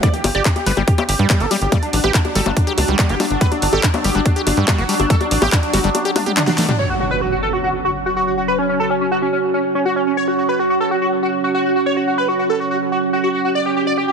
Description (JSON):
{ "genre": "psychedelic trance", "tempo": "142 BPM", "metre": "4/4", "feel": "straight", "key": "unclear", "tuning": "A4 = 444 Hz", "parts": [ { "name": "wide unison lead", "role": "melody", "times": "0.0-14.1 s", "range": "C#4 to D5", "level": "-20 LUFS", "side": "equal", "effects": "phaser, sidechain pumping, dub echo" }, { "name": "overtone-sweeping drone", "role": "sustained chords", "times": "1.2-14.1 s", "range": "F#3 to F#4", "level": "-23 LUFS", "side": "right 1 dB", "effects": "chorus, built-in reverb, sidechain pumping" }, { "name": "overdriven acid bass", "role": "riff", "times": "0.0-6.7 s", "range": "F#3 to G4", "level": "-23 LUFS", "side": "moving between left 4 dB and right 4 dB", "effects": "distortion, auto-pan, sidechain pumping, dub echo" }, { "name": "big-room dance drum kit", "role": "drums", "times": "0.0-6.8 s", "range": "bongos, handclaps, hi-hat, snare drum, toms", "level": "-20 LUFS", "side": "left 2 dB", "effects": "overdrive, low-pass filter on hats, small room ambience, low-pass filter on perc, low-pass filter on snare, low-pass filter on toms" }, { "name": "electronic kick drum", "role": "drums", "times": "0.0-5.6 s", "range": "none", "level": "-16 LUFS", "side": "equal", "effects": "small room ambience" }, { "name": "zap and impact", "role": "sound effects", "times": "0.0, 6.8-8.5 s", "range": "none", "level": "-27 LUFS", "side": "equal", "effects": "none" }, { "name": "deep dark ambient pad", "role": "texture", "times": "0.2-14.1 s", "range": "C#4 to D5", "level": "-25 LUFS", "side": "right 3 dB", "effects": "chorus, built-in reverb, sidechain pumping" }, { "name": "tight sequencer bass", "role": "bass", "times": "0.2-5.9 s", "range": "G1 to G2", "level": "-20 LUFS", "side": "equal", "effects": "tube saturation" } ], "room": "light reverb, digital ambience", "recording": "heavily compressed radio sound, multiband compression", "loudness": "-15 LUFS", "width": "side -5 dB against mid", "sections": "0.0-6.8 A section; 6.8-14.1 B section", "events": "kick drops out 5.9-6.8; drum fill 6.2-6.8; band accent 6.6; impact 6.8-8.5", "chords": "0.0 G5; 6.8 F#5", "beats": "| 0.03 0.45 0.88 1.30 | 1.72 2.14 2.57 2.99 | 3.41 3.83 4.26 4.68 | 5.10 5.52 5.95 6.37 | 6.79 7.21 7.64 8.06 | 8.48 8.90 9.33 9.75 | 10.17 10.59 11.02 11.44 | 11.86 12.28 12.71 13.13 | 13.55 13.97" }